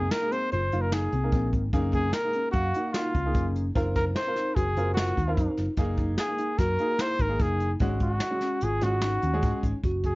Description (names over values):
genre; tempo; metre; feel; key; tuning
progressive instrumental, band music in an uneven meter; 148 BPM; 5/4; straight; unclear; A4 = 440 Hz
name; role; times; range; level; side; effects
mellow trumpet; melody; 0.0-10.2 s; F4 to C5; -28 LUFS; equal; none
dark grand piano; accompaniment; 0.0-9.7 s; Ab3 to F5; -33 LUFS; right 1 dB; none
mellow tine electric piano; arpeggios; 0.0-10.2 s; C4 to F5; -34 LUFS; left 1 dB; lush chorus, tape echo
hollow-body short-scale picked electric bass; bass; 0.0-10.2 s; Gb1 to Ab2; -28 LUFS; equal; none
jazz brush drum kit; drums; 0.1-10.1 s; hi-hat, kick drum, snare drum; -30 LUFS; equal; none
room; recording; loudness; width
moderate studio reverb, RT60 0.6 s; worn, warbling old tape, cassette tape, warbly pitch drift, nothing above 7.6 kHz; -24 LUFS; side -22 dB against mid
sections
0.0-9.8 A section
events
none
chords
0.0 Fm7/Gb; 1.7 Gbmaj9; 3.8 Ab9/Gb (rootless); 5.8 Gb69; 7.8 Ab7sus4